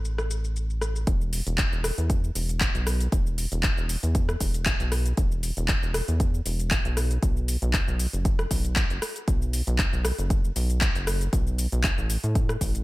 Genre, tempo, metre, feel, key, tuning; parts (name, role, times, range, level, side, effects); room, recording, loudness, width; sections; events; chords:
deep house; 117 BPM; 4/4; swing 54% on 16ths; A4 = 437 Hz
rubbery square bass; bass; 0.0-12.8 s; E1 to A2; -26 LUFS; equal; sidechain pumping
deep house drum kit; drums; 0.0-12.8 s; handclaps, hi-hat, rim click, shaker; -29 LUFS; left 1 dB; overdrive, low-pass filter on snare, low-pass filter on perc, low-pass filter on hats
electronic kick drum; drums; 1.1-12.7 s; -25 LUFS; equal
digital ambience; -23 LUFS; side -19 dB against mid
0.0-1.1 A section; 1.1-12.8 B section
drop 1.1-12.8